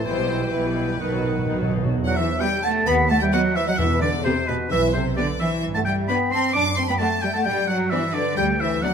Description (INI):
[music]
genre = quick classical-period movement for symphony orchestra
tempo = 130 BPM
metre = 4/4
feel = straight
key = E minor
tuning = A4 = 440 Hz
[part]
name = clear studio violin section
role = melody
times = 0.0-8.9 s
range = B4 to D5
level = -35 LUFS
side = left 5 dB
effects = none
[part]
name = clear oboe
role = second line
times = 0.0-8.9 s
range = B4 to D6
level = -25 LUFS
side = equal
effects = none
[part]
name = mellow hollow large flute ensemble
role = second line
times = 0.0-8.9 s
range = G4 to A5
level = -29 LUFS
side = right 1 dB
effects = none
[part]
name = rich studio violin section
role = second line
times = 0.0-8.9 s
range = B4 to D6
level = -30 LUFS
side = left 2 dB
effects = none
[part]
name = mellow bassoon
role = accompaniment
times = 0.0-1.7 s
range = D#3 to E3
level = -30 LUFS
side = right 1 dB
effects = none
[part]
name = rich studio viola section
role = accompaniment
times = 0.0-8.9 s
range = D#3 to G4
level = -32 LUFS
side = equal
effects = none
[part]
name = mellow French horn section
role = sustained chords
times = 0.0-8.9 s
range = B2 to E4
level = -28 LUFS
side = left 5 dB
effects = none
[part]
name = rich studio cello section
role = bass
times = 0.1-8.9 s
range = B2 to D4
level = -26 LUFS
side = right 2 dB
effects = none
[part]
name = rich studio double bass section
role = bass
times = 0.1-8.8 s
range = B1 to G2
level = -28 LUFS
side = right 3 dB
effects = none
[part]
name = timpani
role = percussion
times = 1.0-4.4 s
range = E2 to B2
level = -28 LUFS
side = right 2 dB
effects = none
[sound]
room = light reverb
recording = close, detailed microphones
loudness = -19 LUFS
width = side -7 dB against mid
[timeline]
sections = 0.0-1.9 A section; 1.9-8.9 B section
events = timpani fill 1.0-1.9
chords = 0.1 Em/B; 1.0 B; 1.9 Em; 2.9 B/D#; 3.8 E5; 5.6 G; 6.5 D/F#; 7.5 G5